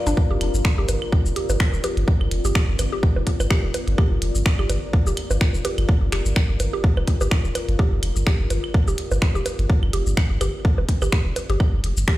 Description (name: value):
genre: minimal techno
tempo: 126 BPM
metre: 4/4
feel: swing 56% on 16ths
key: G minor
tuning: A4 = 440 Hz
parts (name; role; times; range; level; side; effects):
- deep dark ambient pad; texture; 0.0-12.2 s; C4 to D5; -31 LUFS; left 2 dB; chorus, built-in reverb, sidechain pumping
- mallet-like synth pluck; riff; 0.1-12.1 s; D4 to G4; -31 LUFS; right 1 dB; chorus, sidechain pumping, ping-pong delay
- punchy sub bass; bass; 0.1-12.0 s; F1 to G1; -22 LUFS; equal; tube saturation, sidechain pumping
- minimal click drum kit; drums; 0.1-12.2 s; finger snaps, hi-hat, shaker; -29 LUFS; left 1 dB; overdrive
- electronic kick drum; drums; 0.2-12.2 s; none; -18 LUFS; equal; overdrive
- claves and bongos; percussion; 0.4-11.7 s; none; -31 LUFS; right 3 dB; digital delay
room: digital ambience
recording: played on a big sound system in a bare room, stone room reverb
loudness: -18 LUFS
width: side -16 dB against mid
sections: 0.0-12.2 A section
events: none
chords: 0.0 Gm7